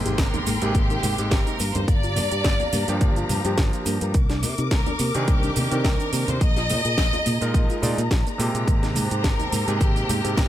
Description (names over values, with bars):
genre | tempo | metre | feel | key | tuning
nu-disco, nu disco | 106 BPM | 4/4 | swing 54% on 16ths | C minor | A4 = 440 Hz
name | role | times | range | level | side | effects
warm electric grand piano | accompaniment | 0.0-10.5 s | C3 to D5 | -29 LUFS | right 2 dB | sidechain pumping, digital delay
warm studio string section | sustained chords | 0.0-10.5 s | G4 to D6 | -32 LUFS | left 2 dB | sidechain pumping
impact | sound effects | 0.0-1.9 s | none | -36 LUFS | equal | none
soft round pluck | arpeggios | 0.1-10.4 s | Bb3 to Eb5 | -32 LUFS | left 1 dB | chorus, vintage 12-bit sampler grit, sidechain pumping, digital delay
fingered electric bass | bass | 0.1-10.5 s | G1 to C3 | -26 LUFS | equal | tube saturation
house drum kit | drums | 0.1-10.5 s | hi-hat, shaker, snare drum | -29 LUFS | right 1 dB | none
cabasa and congas | percussion | 0.1-10.5 s | none | -33 LUFS | right 1 dB | none
bright symphonic violin section | melody | 0.2-10.5 s | G4 to Eb5 | -28 LUFS | left 1 dB | digital delay
electronic kick drum | drums | 0.2-10.5 s | none | -21 LUFS | equal | none
room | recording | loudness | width
little or no reverb | none | -20 LUFS | side -12 dB against mid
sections
0.0-10.5 A section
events
impact 0.0-1.9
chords
0.0 Abmaj9; 1.6 Gm7; 4.2 Cm9; 6.4 Bb7sus4; 8.7 Abmaj9